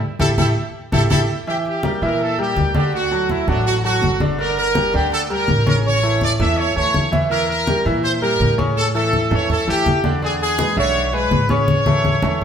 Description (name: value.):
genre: latin, salsa.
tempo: 164 BPM.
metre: 4/4.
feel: straight.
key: unclear.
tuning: A4 = 442 Hz.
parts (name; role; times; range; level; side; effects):
brilliant horn section; melody; 0.2-12.4 s; D4 to E5; -20 LUFS; equal; none.
bright grand piano; accompaniment; 0.2-12.4 s; C#3 to E5; -22 LUFS; equal; none.
upright bass; bass; 0.2-12.4 s; G1 to Bb2; -23 LUFS; equal; none.
congas; percussion; 0.2-12.4 s; none; -21 LUFS; left 1 dB; none.
room: wet stone room reverb, RT60 1.2 s.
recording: band playing live in one room.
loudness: -15 LUFS.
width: side -8 dB against mid.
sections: 0.0-1.5 A section; 1.5-12.4 B section.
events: band accent 0.0-1.5; drum fill 11.7-12.4.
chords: 0.0 A5; 1.5 Edim; 2.9 D; 4.4 Gm; 5.9 A; 7.3 Edim; 8.8 A; 10.2 E7; 11.7 A.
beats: | 0.02 0.38 0.74 1.11 | 1.47 1.84 2.20 2.57 | 2.93 3.30 3.66 4.03 | 4.39 4.76 5.12 5.49 | 5.85 6.22 6.58 6.95 | 7.31 7.68 8.04 8.40 | 8.77 9.13 9.50 9.86 | 10.23 10.59 10.96 11.32 | 11.68 12.05 12.41.